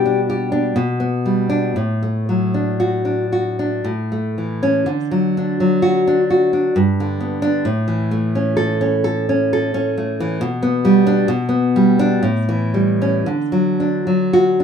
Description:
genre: romantic piece for solo classical guitar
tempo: 56-69 BPM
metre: 3/4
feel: rubato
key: D major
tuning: A4 = 440 Hz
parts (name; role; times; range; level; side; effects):
- nylon-string guitar; solo; 0.0-14.6 s; G2 to A4; -15 LUFS; equal; none
room: wet small room reverb, RT60 0.5 s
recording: rough home demo mix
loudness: -15 LUFS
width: side -7 dB against mid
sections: 0.0-14.6 A section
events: none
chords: 0.0 G/B; 1.8 D/A; 3.9 A; 4.9 D; 6.7 G; 7.6 A; 10.4 G/B; 12.2 A7; 13.3 D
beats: 0.75 | 1.76 2.81 3.86 | 4.86 5.82 6.74 | 7.65 8.57 9.50 | 10.41 11.29 12.23 | 13.26 14.32

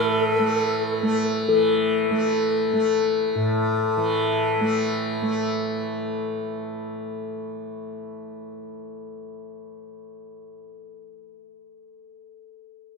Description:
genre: world meditative, free-time meditation music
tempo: free time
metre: none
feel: none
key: unclear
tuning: A4 = 439 Hz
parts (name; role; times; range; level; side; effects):
- breathy bright pan flute; melody; 0.0-1.1 s; A4; -28 LUFS; equal; none
- tanpura; drone; 0.0-11.3 s; A2 to A3; -25 LUFS; right 2 dB; none
- bronze singing bowl; texture; 1.5-5.4 s; A4; -26 LUFS; left 6 dB; none
room: wet cathedral reverb, RT60 6.2 s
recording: none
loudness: -21 LUFS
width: side -4 dB against mid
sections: 0.0-1.5 A section; 1.5-5.4 B section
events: none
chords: none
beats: free time

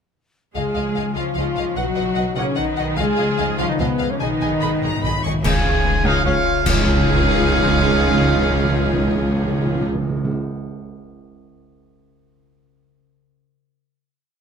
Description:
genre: cinematic, heroic adventure film score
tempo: 148 BPM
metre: 3/4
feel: straight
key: Db mixolydian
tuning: A4 = 440 Hz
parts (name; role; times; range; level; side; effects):
- warm symphonic violin section; melody; 0.6-9.9 s; Ab4 to Db6; -27 LUFS; left 1 dB; none
- silver concert flute; second line; 0.6-9.9 s; Cb5 to Ab5; -30 LUFS; left 3 dB; none
- warm symphonic violin section; second line; 0.6-9.9 s; F4 to Eb5; -31 LUFS; left 2 dB; none
- rich symphonic viola section; accompaniment; 0.6-9.9 s; Ab3 to Ab4; -29 LUFS; equal; none
- warm French horn section; sustained chords; 0.6-9.9 s; Cb4 to Ab4; -26 LUFS; left 6 dB; none
- warm trombone section; sustained chords; 0.6-9.9 s; Eb3 to Ab3; -31 LUFS; right 6 dB; none
- concert harp; arpeggios; 0.6-10.7 s; Cb3 to Ab5; -29 LUFS; left 16 dB; none
- warm trumpet; stabs; 0.6-9.9 s; Ab3 to Ab5; -26 LUFS; right 5 dB; none
- clear studio double bass section; bass; 0.6-9.9 s; Cb2 to Db2; -25 LUFS; right 3 dB; none
- rich symphonic cello section; bass; 0.6-9.9 s; Db2 to Ab3; -25 LUFS; right 1 dB; none
- cymbal swell, clash cymbals and concert bass drum; percussion; 3.0-7.4 s; none; -23 LUFS; equal; none
- timpani; percussion; 4.2-10.4 s; Ab2 to Db3; -24 LUFS; right 2 dB; none
room: light reverb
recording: close, detailed microphones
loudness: -17 LUFS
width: side -7 dB against mid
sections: 0.6-5.4 theme; 5.4-6.7 outro; 6.7-9.1 final chord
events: timpani fill 4.2-5.4; band accent 5.4-5.9, 6.7-7.1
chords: 0.6 Dbadd9; 1.8 Cb; 3.0 Dbadd9; 4.2 Abm/Cb; 5.4 Dbadd9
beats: | 0.56 0.96 1.37 | 1.77 2.17 2.57 | 2.98 3.38 3.79 | 4.20 4.62 5.03 | 5.45 5.85 6.26 | 6.67 7.07 7.48 | 7.88 8.29 8.69

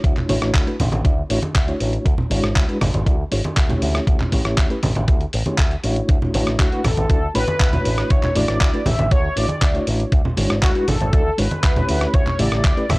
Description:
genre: nu-disco, nu disco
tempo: 119 BPM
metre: 4/4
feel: straight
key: D major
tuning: A4 = 440 Hz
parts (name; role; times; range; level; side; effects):
- mellow reed electric piano; accompaniment; 0.0-12.9 s; C#3 to E5; -24 LUFS; equal; fast tremolo, vintage 12-bit sampler grit, sidechain pumping
- picked electric bass with an envelope filter; bass; 0.0-13.0 s; G#1 to D2; -22 LUFS; equal; sidechain pumping
- dusty soul sampler-style drum kit; drums; 0.0-13.0 s; handclaps, hi-hat, rim click; -26 LUFS; equal; none
- electronic kick drum; drums; 0.0-12.7 s; none; -17 LUFS; equal; none
- congas; percussion; 0.2-13.0 s; none; -24 LUFS; right 1 dB; none
- wide unison lead; melody; 6.6-13.0 s; F#4 to E5; -24 LUFS; equal; analog chorus
room: little or no reverb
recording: dry, gritty hardware recording, transformer saturation, cassette tape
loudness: -16 LUFS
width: side -23 dB against mid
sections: 0.0-13.0 A section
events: none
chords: 0.0 Dmaj9; 2.1 E13; 3.8 A7; 6.1 Dmaj9; 10.1 E13; 11.9 A7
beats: | 0.04 0.55 1.05 1.55 | 2.06 2.56 3.07 3.57 | 4.07 4.58 5.08 5.59 | 6.09 6.59 7.10 7.60 | 8.11 8.61 9.12 9.62 | 10.12 10.63 11.13 11.64 | 12.14 12.64

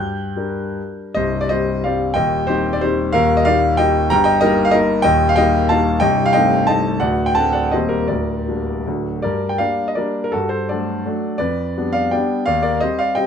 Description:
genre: classical, romantic triple-time dance for piano with dotted rhythms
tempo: 137-202 BPM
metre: 3/4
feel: rubato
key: C minor, G minor from 5.0 s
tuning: A4 = 441 Hz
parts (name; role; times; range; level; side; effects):
- warm grand piano; solo; 0.0-13.3 s; C1 to G6; -15 LUFS; left 1 dB; none
room: moderate large studio reverb, RT60 0.8 s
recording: none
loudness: -15 LUFS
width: side -7 dB against mid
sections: 0.0-1.2 A section; 1.2-9.2 B section; 9.2-13.3 A section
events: none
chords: 0.0 Gm; 1.2 Cm; 2.1 Cm/Eb; 3.1 Eb; 4.1 Eb/G; 5.0 Eb; 6.0 Am7b5/C; 7.0 D7; 7.7 Eb6; 8.1 Gm/D; 8.9 D; 9.2 Gm; 10.3 D/G; 11.4 G7/F; 12.5 Cm/Eb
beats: 0.36 0.78 | 1.15 1.50 1.84 | 2.15 2.48 2.82 | 3.13 3.46 3.79 | 4.10 4.41 4.73 | 5.04 5.37 5.69 | 6.01 6.34 6.68 | 7.01 7.36 7.72 | 8.08 8.47 8.86 | 9.22 9.59 9.97 | 10.32 10.68 11.05 | 11.40 11.76 12.12 | 12.46 12.81 13.16

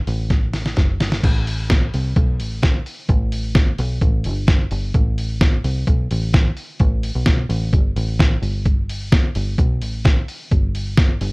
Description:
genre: jangly indie pop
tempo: 129 BPM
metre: 4/4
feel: straight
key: unclear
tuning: A4 = 440 Hz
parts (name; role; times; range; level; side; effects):
- deep dub picked electric bass; bass; 0.1-11.3 s; F#1 to C2; -22 LUFS; equal; none
- trip hop sampler-style drum kit; drums; 0.1-11.3 s; crash cymbal, hi-hat, kick drum, snare drum; -17 LUFS; equal; none
room: little or no reverb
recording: rough home demo mix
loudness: -16 LUFS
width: side -31 dB against mid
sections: 0.0-1.2 A section; 1.2-11.3 B section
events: drum fill 0.3-1.2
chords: none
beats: 0.31 0.77 | 1.24 1.70 2.16 2.63 | 3.09 3.56 4.02 4.49 | 4.95 5.41 5.88 6.34 | 6.81 7.27 7.73 8.20 | 8.66 9.13 9.59 10.05 | 10.52 10.98

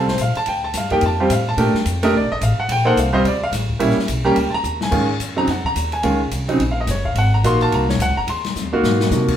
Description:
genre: modal jazz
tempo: 215 BPM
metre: 4/4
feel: swing 61% on 8ths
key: Bb major, Ab mixolydian from 4.9 s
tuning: A4 = 440 Hz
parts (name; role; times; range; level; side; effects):
- clear concert grand piano; accompaniment; 0.0-9.4 s; Db3 to C6; -18 LUFS; right 1 dB; none
- upright bass; bass; 0.0-9.4 s; Gb1 to C3; -21 LUFS; equal; none
- open jazz drum kit; drums; 0.1-9.3 s; crash cymbal, hi-hat, kick drum, ride cymbal, snare drum; -26 LUFS; left 4 dB; none
room: wet large studio reverb, RT60 0.9 s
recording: band playing live in one room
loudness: -16 LUFS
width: side -10 dB against mid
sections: 0.0-4.9 A section; 4.9-9.4 A section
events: drum fill 4.6, 8.6-9.1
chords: 0.0 Bbmaj9; 3.8 Eb7b9; 4.9 Ab13sus4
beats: 0.19 | 0.47 0.75 1.03 1.31 | 1.58 1.86 2.14 2.42 | 2.70 2.98 3.25 3.53 | 3.81 4.09 4.37 4.65 | 4.93 5.21 5.48 5.76 | 6.04 6.32 6.60 6.88 | 7.16 7.44 7.72 8.00 | 8.28 8.55 8.83 9.11

